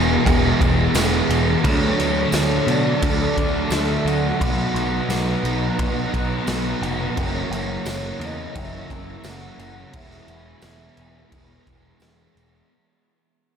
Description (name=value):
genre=rock, shoegaze and dream pop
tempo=87 BPM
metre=4/4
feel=straight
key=unclear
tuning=A4 = 438 Hz
part: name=mellow horn-like synth lead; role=melody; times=0.0-12.0 s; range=C#5 to G#5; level=-31 LUFS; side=left 1 dB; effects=chorus, phaser, ping-pong delay
part: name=crunchy overdriven guitar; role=riff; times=0.0-12.7 s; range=F#2 to E4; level=-24 LUFS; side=right 7 dB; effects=reverse reverb
part: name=thick fuzz guitar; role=riff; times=0.0-12.7 s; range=E2 to D4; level=-25 LUFS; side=left 8 dB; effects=distortion, lush chorus
part: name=growling picked electric bass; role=bass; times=0.0-12.6 s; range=E1 to B2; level=-25 LUFS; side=equal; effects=overdrive
part: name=raw garage drum kit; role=drums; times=0.3-12.5 s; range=crash cymbal, kick drum, snare drum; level=-24 LUFS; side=equal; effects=none
part: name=tambourine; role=percussion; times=0.9-12.2 s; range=none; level=-36 LUFS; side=right 6 dB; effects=none
part: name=chorused pulse-width pad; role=sustained chords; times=1.9-12.7 s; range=D4 to B5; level=-32 LUFS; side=equal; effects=none
room=wet huge ambient reverb, RT60 4.5 s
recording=dreamy mix soaked in reverb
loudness=-18 LUFS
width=side -7 dB against mid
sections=0.0-12.7 A section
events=fade-out 0.0-12.7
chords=0.0 E; 1.6 Dmaj7; 4.4 Bmaj7; 7.2 F#7; 9.9 E6